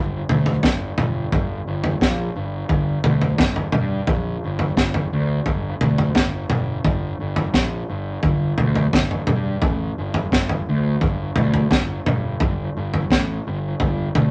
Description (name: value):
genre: psychedelic rock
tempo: 86 BPM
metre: 4/4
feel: straight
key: G minor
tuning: A4 = 438 Hz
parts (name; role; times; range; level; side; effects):
- fuzz picked electric bass; bass; 0.0-14.3 s; G1 to G2; -25 LUFS; equal; overdrive
- crunchy breakbeat drum kit; drums; 0.3-14.3 s; kick drum, snare drum, toms; -23 LUFS; equal; none
room: moderate studio reverb, RT60 0.8 s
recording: none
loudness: -21 LUFS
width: mono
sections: 0.0-14.3 A section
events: none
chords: none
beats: 0.64 1.33 2.02 | 2.71 3.40 4.09 4.78 | 5.47 6.16 6.86 7.55 | 8.24 8.94 9.63 10.33 | 11.02 11.72 12.41 13.11 | 13.80